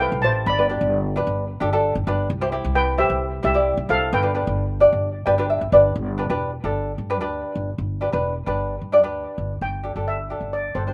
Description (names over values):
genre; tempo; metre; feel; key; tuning
calypso; 131 BPM; 4/4; straight; unclear; A4 = 440 Hz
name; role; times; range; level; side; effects
steel pan; melody; 0.0-5.7, 9.6-10.9 s; G4 to B5; -25 LUFS; equal; none
tenor ukulele; accompaniment; 0.0-10.9 s; D4 to G5; -23 LUFS; equal; none
upright bass; bass; 0.0-10.9 s; E1 to G2; -28 LUFS; equal; none
room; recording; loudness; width
little or no reverb; recorded outdoors, with no room sound; -22 LUFS; mono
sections
0.0-6.0 A section; 6.0-9.6 B section; 9.6-10.9 C section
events
ukulele fill 5.0-6.0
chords
0.5 G; 2.3 C; 4.1 G; 9.6 Gsus2